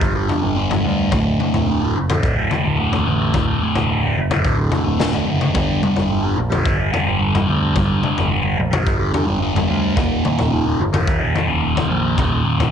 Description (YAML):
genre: psychedelic rock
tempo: 109 BPM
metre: 4/4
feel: straight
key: unclear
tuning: A4 = 440 Hz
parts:
  - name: thick fuzz guitar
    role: riff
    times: 0.0-12.7 s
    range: D2 to G3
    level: -18 LUFS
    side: right 1 dB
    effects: distortion, phaser
  - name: overdriven picked electric bass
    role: bass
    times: 0.0-12.7 s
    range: D1 to D2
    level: -23 LUFS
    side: right 1 dB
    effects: none
  - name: raw garage drum kit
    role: drums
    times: 0.0-12.7 s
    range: kick drum, snare drum, toms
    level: -21 LUFS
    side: left 2 dB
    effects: none
room: light reverb, small room ambience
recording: 1960s-style stereo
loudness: -16 LUFS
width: side -8 dB against mid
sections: 0.0-12.7 A section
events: none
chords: 0.0 G5; 1.1 D; 5.6 G5; 10.0 Eb5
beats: 0.02 0.57 | 1.12 1.68 2.23 2.79 | 3.34 3.90 4.45 5.00 | 5.55 6.11 6.66 7.21 | 7.76 8.32 8.87 9.42 | 9.97 10.52 11.07 11.62 | 12.17